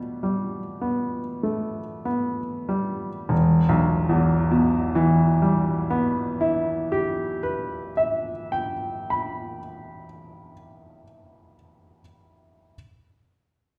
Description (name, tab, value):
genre	classical, romantic nocturne for solo piano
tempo	33 BPM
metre	4/4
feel	rubato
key	E minor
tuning	A4 = 435 Hz
part	clear upright piano	solo	0.0-12.8 s	E1 to B5	-24 LUFS	equal	none
room	wet recital hall reverb, RT60 1.3 s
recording	recorded in a church or concert hall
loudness	-24 LUFS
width	mono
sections	0.0-3.3 A section; 3.3-10.5 B section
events	slowing down 0.0-3.3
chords	0.0 Em